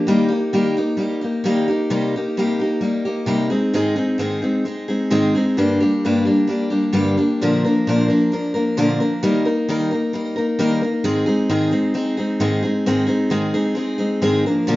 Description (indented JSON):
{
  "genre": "rock",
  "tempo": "132 BPM",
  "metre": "4/4",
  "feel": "straight",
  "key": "unclear",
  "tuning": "A4 = 439 Hz",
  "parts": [
    { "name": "picked steel-string acoustic guitar", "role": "solo", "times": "0.0-14.8 s", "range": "G2 to Bb4", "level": "-17 LUFS", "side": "equal", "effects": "slapback echo" }
  ],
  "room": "wet studio reverb, RT60 0.5 s",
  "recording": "rough home demo mix, nothing above 7.6 kHz",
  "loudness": "-17 LUFS",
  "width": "side -17 dB against mid",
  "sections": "0.0-7.4 A section; 7.4-14.8 B section",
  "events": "none",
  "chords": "0.1 Eb; 1.9 Cm7; 3.5 Ab; 5.6 Gm; 7.4 Bb; 9.2 Eb; 11.0 Ab",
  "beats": "| 0.08 0.54 1.00 1.46 | 1.92 2.38 2.83 3.29 | 3.75 4.21 4.67 5.13 | 5.58 6.04 6.50 6.96 | 7.41 7.87 8.32 8.78 | 9.23 9.69 10.14 10.59 | 11.05 11.50 11.95 12.41 | 12.86 13.31 13.76 14.22 | 14.67"
}